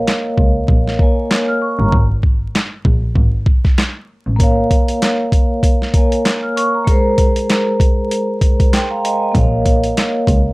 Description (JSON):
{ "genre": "hip hop, boom-bap hip-hop", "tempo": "97 BPM", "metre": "4/4", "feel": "swing 57% on 16ths", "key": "Bb minor", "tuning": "A4 = 439 Hz", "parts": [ { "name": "vibraphone with soft mallets", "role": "accompaniment", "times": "0.0-10.5 s", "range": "Ab3 to F6", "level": "-17 LUFS", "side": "equal", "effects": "high-pass filter, low-pass filter, plate reverb" }, { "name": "boom bap sampler-style drum kit", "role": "drums", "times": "0.1-10.4 s", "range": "handclaps, hi-hat, kick drum, snare drum", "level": "-14 LUFS", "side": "equal", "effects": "none" }, { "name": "clear double bass", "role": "bass", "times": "0.4-4.4, 9.3-10.5 s", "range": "G1 to Db2", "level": "-17 LUFS", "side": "equal", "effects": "none" } ], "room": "light reverb", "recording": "vinyl crackle", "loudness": "-12 LUFS", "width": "side -22 dB against mid", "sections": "0.0-10.5 A section", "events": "break 0.0-4.4", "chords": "0.0 Bbm; 1.9 Absus2; 4.4 Bbm; 6.9 Abadd9; 9.3 Bbm" }